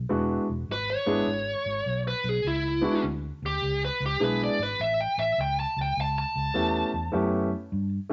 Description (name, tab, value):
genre	electric blues shuffle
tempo	102 BPM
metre	4/4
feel	swing 65% on 8ths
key	E mixolydian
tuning	A4 = 441 Hz
part	vintage muted fingered electric bass	bass	0.0-8.1 s	E1 to G2	-34 LUFS	equal	none
part	warm grand piano	accompaniment	0.1-8.1 s	G#3 to G#4	-29 LUFS	equal	none
part	dark smooth lead guitar	melody	0.7-7.9 s	E4 to A5	-30 LUFS	equal	overdrive
room	moderate studio reverb, RT60 0.8 s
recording	nothing above 7.6 kHz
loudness	-27 LUFS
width	mono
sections	0.0-8.1 A section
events	lead electric guitar solo 0.0-8.1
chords	0.0 E7; 4.8 A7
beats	| 0.11 0.69 1.28 1.86 | 2.45 3.04 3.62 4.21 | 4.79 5.38 5.96 6.55 | 7.14 7.72